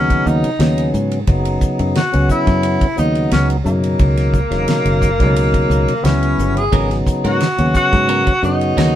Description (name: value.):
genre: electric jazz fusion.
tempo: 88 BPM.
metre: 4/4.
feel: straight.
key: unclear.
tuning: A4 = 440 Hz.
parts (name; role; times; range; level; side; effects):
clear tenor saxophone; melody; 0.0-9.0 s; A#3 to G#4; -18 LUFS; equal; none.
tonewheel organ; accompaniment; 0.0-9.0 s; B2 to F#4; -19 LUFS; left 1 dB; slow rotary speaker.
fingered electric bass; bass; 0.0-9.0 s; E1 to G#2; -18 LUFS; equal; none.
damped 70s drum kit; drums; 0.1-9.0 s; hi-hat, kick drum, ride cymbal, snare drum; -20 LUFS; equal; none.
clean electric guitar; stabs; 6.7-9.0 s; B3 to A#4; -24 LUFS; right 2 dB; none.
room: moderate studio reverb, RT60 0.5 s.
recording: band playing live in one room.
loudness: -13 LUFS.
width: side -11 dB against mid.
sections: 0.0-9.0 A section.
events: none.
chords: 0.0 G#m7; 1.3 F#7sus4; 6.7 G#m11.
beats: 0.60 | 1.27 1.95 2.63 3.31 | 3.99 4.67 5.36 6.04 | 6.72 7.41 8.09 8.78.